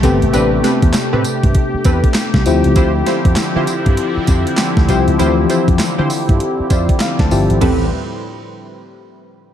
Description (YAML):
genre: R&B, new jack swing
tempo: 99 BPM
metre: 4/4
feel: swing 62% on 16ths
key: A minor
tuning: A4 = 438 Hz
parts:
  - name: FM electric piano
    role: accompaniment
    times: 0.0-7.9 s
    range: C3 to A5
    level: -18 LUFS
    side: left 4 dB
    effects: chorus
  - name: sweeping resonant pad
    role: sustained chords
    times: 0.0-7.9 s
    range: A2 to B4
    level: -21 LUFS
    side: equal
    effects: chorus
  - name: funky polysynth comp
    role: stabs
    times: 0.0-7.9 s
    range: C4 to C5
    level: -21 LUFS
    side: right 2 dB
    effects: chorus, tape echo
  - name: slap bass with an envelope filter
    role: bass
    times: 0.0-7.9 s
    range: G1 to D3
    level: -17 LUFS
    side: equal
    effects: none
  - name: crisp 8-bit digital drum machine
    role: drums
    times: 0.0-7.8 s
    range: crash cymbal, handclaps, hi-hat, kick drum, snare drum, tambourine, toms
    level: -16 LUFS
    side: equal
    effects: overdrive
room: light reverb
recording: dark, warm production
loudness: -12 LUFS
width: side -10 dB against mid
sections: 0.0-7.6 A section; 7.6-9.5 B section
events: FM electric piano fill 6.4-7.6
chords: 0.0 Am9; 2.5 Dm11; 7.6 Am9